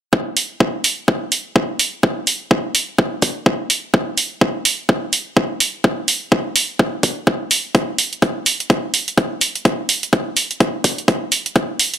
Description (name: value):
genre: bass house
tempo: 126 BPM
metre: 4/4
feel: swing 59% on 16ths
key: none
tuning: none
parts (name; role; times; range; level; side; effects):
- electronic kick drum; drums; 0.1-11.7 s; none; -16 LUFS; equal; high-pass filter on kick, high-pass filter on room
- electronic hi-hat; drums; 0.4-12.0 s; none; -16 LUFS; right 3 dB; none
room: little or no reverb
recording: none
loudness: -16 LUFS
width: side -10 dB against mid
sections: 0.1-12.0 A section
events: none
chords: none